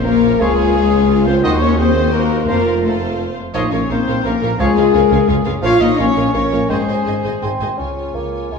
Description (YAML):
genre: classical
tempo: 171 BPM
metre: 3/4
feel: straight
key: unclear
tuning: A4 = 440 Hz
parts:
  - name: warm symphonic violin section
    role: melody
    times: 0.0-8.6 s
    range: Ab4 to Ab5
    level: -29 LUFS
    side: left 1 dB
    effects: none
  - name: mellow clarinet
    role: second line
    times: 0.0-7.6 s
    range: Db4 to Db5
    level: -23 LUFS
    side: equal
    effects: none
  - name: warm symphonic violin section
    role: second line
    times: 0.0-8.6 s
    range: C5 to Ab5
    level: -30 LUFS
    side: equal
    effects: none
  - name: warm symphonic viola section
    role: accompaniment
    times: 0.0-8.6 s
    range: F4 to C5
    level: -27 LUFS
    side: right 1 dB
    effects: none
  - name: mellow French horn section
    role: sustained chords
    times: 0.0-8.6 s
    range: Ab3 to Ab4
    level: -17 LUFS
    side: left 5 dB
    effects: none
  - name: clear trumpet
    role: stabs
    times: 0.0-7.4 s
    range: Ab4 to F5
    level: -24 LUFS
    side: equal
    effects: none
  - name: clear tuba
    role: bass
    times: 0.0-7.7 s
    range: F1 to Eb2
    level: -25 LUFS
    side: right 4 dB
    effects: none
  - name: rich symphonic cello section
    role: bass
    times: 0.0-8.6 s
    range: Db2 to Db3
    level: -23 LUFS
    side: left 3 dB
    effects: none
  - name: rich symphonic double bass section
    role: bass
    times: 0.0-8.6 s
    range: F1 to Eb2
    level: -22 LUFS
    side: right 3 dB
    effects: none
  - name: bright silver concert flute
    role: second line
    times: 0.4-6.9 s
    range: F5 to Ab5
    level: -32 LUFS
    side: right 1 dB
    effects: none
  - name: clear oboe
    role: second line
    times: 0.4-6.8 s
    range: C5 to Db5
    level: -30 LUFS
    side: left 1 dB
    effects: none
  - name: mellow bassoon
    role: accompaniment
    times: 0.4-8.6 s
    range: Eb3 to Db4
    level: -27 LUFS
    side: right 2 dB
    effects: none
room: wet recital hall reverb, RT60 1.8 s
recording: none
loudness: -13 LUFS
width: side -5 dB against mid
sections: 0.0-7.8 A section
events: none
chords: 0.4 Db; 1.4 Cdim/Eb; 2.5 F; 3.5 Bbm; 4.6 Db; 5.6 Bbm; 6.7 Ab; 7.8 Db